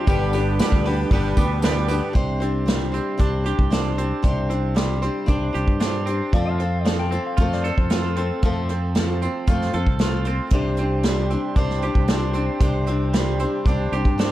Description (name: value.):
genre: folk rock and heartland rock.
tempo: 115 BPM.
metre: 4/4.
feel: straight.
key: unclear.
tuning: A4 = 443 Hz.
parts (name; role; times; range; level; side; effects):
clean lap steel guitar; second line; 0.0-1.6, 6.3-9.2 s; G4 to G5; -31 LUFS; left 7 dB; plate reverb.
picked steel-string acoustic guitar; accompaniment; 0.0-14.3 s; F3 to C5; -26 LUFS; left 3 dB; plate reverb.
musette accordion; sustained chords; 0.0-2.1, 10.5-14.3 s; B3 to C5; -35 LUFS; right 2 dB; none.
twangy electric guitar; riff; 0.0-14.3 s; G2 to A4; -29 LUFS; right 6 dB; wide subtle chorus.
fingered electric bass; bass; 0.1-14.3 s; G1 to G2; -24 LUFS; equal; none.
soft brush drum kit; drums; 0.1-14.3 s; hi-hat, kick drum, snare drum; -22 LUFS; equal; none.
tambourine; percussion; 0.1-2.0 s; none; -42 LUFS; left 7 dB; none.
room: light reverb.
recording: dark, warm production.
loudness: -19 LUFS.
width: side -14 dB against mid.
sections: 0.0-2.2 A section; 2.2-14.3 B section.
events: none.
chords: 0.1 G; 2.2 Csus2; 6.3 F; 10.5 Csus2.